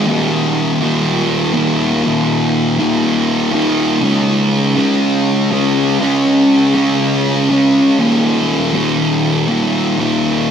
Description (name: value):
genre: rock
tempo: 121 BPM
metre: 4/4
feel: straight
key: unclear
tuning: A4 = 441 Hz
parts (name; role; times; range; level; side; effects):
- thick fuzz guitar; solo; 0.0-10.5 s; Eb2 to Db4; -12 LUFS; equal; distortion, wide subtle chorus, analog delay
room: wet huge ambient reverb, RT60 6.2 s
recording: dreamy mix soaked in reverb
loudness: -12 LUFS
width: side -8 dB against mid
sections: 0.1-10.5 A section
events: none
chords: 0.1 Eb5; 4.0 Db5; 8.0 Eb5